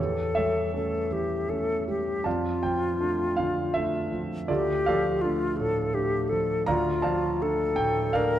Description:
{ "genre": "classical, romantic duo for flute and grand piano", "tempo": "81 BPM", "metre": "3/4", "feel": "rubato", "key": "D minor", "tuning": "A4 = 442 Hz", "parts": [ { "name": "hollow concert flute", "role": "melody", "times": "0.0-8.4 s", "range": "F4 to Bb4", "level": "-27 LUFS", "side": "left 3 dB", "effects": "none" }, { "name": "warm concert grand piano", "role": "accompaniment", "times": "0.0-8.4 s", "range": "D2 to Bb5", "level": "-27 LUFS", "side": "right 2 dB", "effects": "none" } ], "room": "moderate concert hall reverb, RT60 1.6 s", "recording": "close, detailed microphones", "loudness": "-24 LUFS", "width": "side -11 dB against mid", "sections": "0.0-8.4 A section", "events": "none", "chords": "0.0 A7/E; 2.3 Dm/F; 4.5 Dm" }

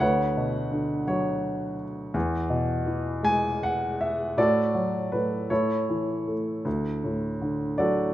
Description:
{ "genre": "classical, lyrical solo piano", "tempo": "51-57 BPM (dotted quarters)", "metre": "6/8", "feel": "rubato", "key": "D major", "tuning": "A4 = 440 Hz", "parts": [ { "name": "warm grand piano", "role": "solo", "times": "0.0-8.1 s", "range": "D2 to G#5", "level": "-24 LUFS", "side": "equal", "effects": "none" } ], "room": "moderate recital hall reverb, RT60 1.4 s", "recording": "minimal, uncompressed stereo recording", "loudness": "-24 LUFS", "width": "side -14 dB against mid", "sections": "0.0-8.1 A section", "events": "none", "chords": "0.0 Bmadd9/D; 2.2 E; 4.4 D/A; 5.5 A; 6.7 D" }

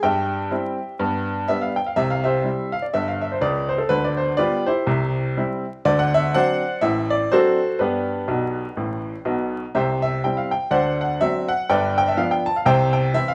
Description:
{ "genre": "jazz, stride piano", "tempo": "123 BPM", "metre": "4/4", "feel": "swing 59% on 8ths", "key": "C major", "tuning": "A4 = 440 Hz", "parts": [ { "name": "bright upright piano", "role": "solo", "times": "0.0-13.3 s", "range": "G1 to A5", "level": "-21 LUFS", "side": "equal", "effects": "none" } ], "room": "moderate large studio reverb, RT60 1.2 s", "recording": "band playing live in one room, vinyl crackle", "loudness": "-21 LUFS", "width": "mono", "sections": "0.0-2.0 A section; 2.0-13.3 B section", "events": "upright piano fill 8.3-9.7", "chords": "0.0 C/G; 1.0 G; 2.0 C; 3.9 G7/D; 4.9 C; 5.9 D7; 7.8 G; 9.7 C; 10.7 D7; 11.7 G7; 12.7 C" }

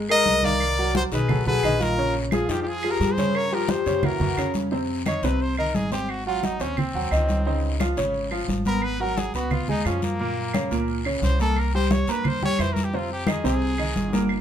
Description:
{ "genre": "Afro-Cuban jazz", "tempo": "175 BPM", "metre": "4/4", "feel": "straight", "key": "F minor", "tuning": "A4 = 440 Hz", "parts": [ { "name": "clear concert grand piano", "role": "accompaniment", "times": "0.0-14.4 s", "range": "Bb2 to C6", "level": "-26 LUFS", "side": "right 1 dB", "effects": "none" }, { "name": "upright bass", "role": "bass", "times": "0.0-14.4 s", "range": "G1 to G2", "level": "-28 LUFS", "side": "equal", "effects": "none" }, { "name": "brilliant trumpet", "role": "melody", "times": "0.1-14.3 s", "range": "Bb3 to Eb5", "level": "-27 LUFS", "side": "left 1 dB", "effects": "none" }, { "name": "breathy mellow concert flute", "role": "second line", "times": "0.1-4.6 s", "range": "Eb4 to Bb4", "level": "-27 LUFS", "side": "left 5 dB", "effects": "none" }, { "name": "claves", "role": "percussion", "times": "0.1-14.4 s", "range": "none", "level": "-35 LUFS", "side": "right 3 dB", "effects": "none" }, { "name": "congas", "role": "percussion", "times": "0.1-14.4 s", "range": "none", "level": "-28 LUFS", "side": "equal", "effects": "none" }, { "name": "guiro", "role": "percussion", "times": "0.3-14.4 s", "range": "none", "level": "-38 LUFS", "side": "left 5 dB", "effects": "none" } ], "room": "moderate studio reverb, RT60 0.9 s", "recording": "minimal, uncompressed stereo recording", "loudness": "-21 LUFS", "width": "side -9 dB against mid", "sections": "0.0-4.7 A section; 4.7-14.4 B section", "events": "trumpet solo 4.7-14.4", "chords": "0.0 Db6 (rootless); 0.6 Cm7b5; 1.3 B6; 2.0 Bbm7; 3.3 Bbm69; 4.0 Gb7; 4.7 Fm7; 6.1 Ab7; 7.5 Dbmaj9; 8.8 Abm7; 9.5 Db9; 10.2 Gb; 11.6 C7; 12.9 Fm9" }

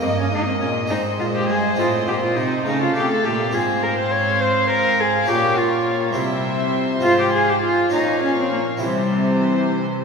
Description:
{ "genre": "classical, baroque-style concerto movement with solo episodes", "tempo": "68 BPM (dotted quarters)", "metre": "6/8", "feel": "straight", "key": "F minor from 3.5 s", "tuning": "A4 = 440 Hz", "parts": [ { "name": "warm cello", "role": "melody", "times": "0.0-9.7 s", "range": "G3 to Db5", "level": "-20 LUFS", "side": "left 1 dB", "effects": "none" }, { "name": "warm studio violin section", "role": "melody", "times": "0.0-10.0 s", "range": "C5 to F5", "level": "-29 LUFS", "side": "left 4 dB", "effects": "none" }, { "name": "rich chamber violin section", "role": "second line", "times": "0.0-10.0 s", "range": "A4 to Eb5", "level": "-26 LUFS", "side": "left 2 dB", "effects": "none" }, { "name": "harpsichord", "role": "accompaniment", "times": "0.0-10.0 s", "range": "G2 to F4", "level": "-27 LUFS", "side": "equal", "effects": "none" }, { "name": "rich chamber viola section", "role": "accompaniment", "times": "0.0-10.0 s", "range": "E3 to C4", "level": "-28 LUFS", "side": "right 2 dB", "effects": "none" }, { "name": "warm chamber cello section", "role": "bass", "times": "0.0-10.0 s", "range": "G2 to Db3", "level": "-25 LUFS", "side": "right 3 dB", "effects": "none" } ], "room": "wet church reverb, RT60 2.9 s", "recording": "recorded in a church or concert hall", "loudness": "-17 LUFS", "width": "side -5 dB against mid", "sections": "0.0-10.0 A section", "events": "none", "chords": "0.0 Eb/G; 0.9 Ab; 1.8 F7/A; 3.5 Fm/Ab; 5.3 Bbm; 6.2 C; 7.0 Fm/Ab; 7.9 Bbm; 8.8 C" }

